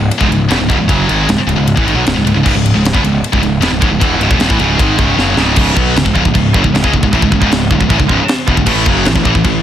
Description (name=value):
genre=heavy metal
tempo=154 BPM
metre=4/4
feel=straight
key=C# minor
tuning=A4 = 440 Hz
part: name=heavy high-gain guitar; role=riff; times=0.0-9.6 s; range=C#2 to B3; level=-15 LUFS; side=left 7 dB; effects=distortion
part: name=heavy high-gain guitar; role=riff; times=0.0-9.6 s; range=C#2 to B3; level=-16 LUFS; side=right 9 dB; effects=distortion
part: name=high-gain distorted guitar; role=riff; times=0.0-5.6 s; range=C#2 to G#3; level=-20 LUFS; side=right 1 dB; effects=distortion
part: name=fuzz picked electric bass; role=bass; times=0.0-9.6 s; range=C#1 to C#2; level=-16 LUFS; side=equal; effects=overdrive
part: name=tight metal drum kit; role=drums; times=0.1-9.5 s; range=china cymbal, crash cymbal, kick drum, ride cymbal, snare drum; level=-15 LUFS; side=equal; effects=none
room=small room ambience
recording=dense, heavily limited modern master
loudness=-9 LUFS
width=side -10 dB against mid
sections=0.0-5.6 A section; 5.6-9.6 B section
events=drum fill 5.2-5.6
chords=0.0 C#m; 8.7 A5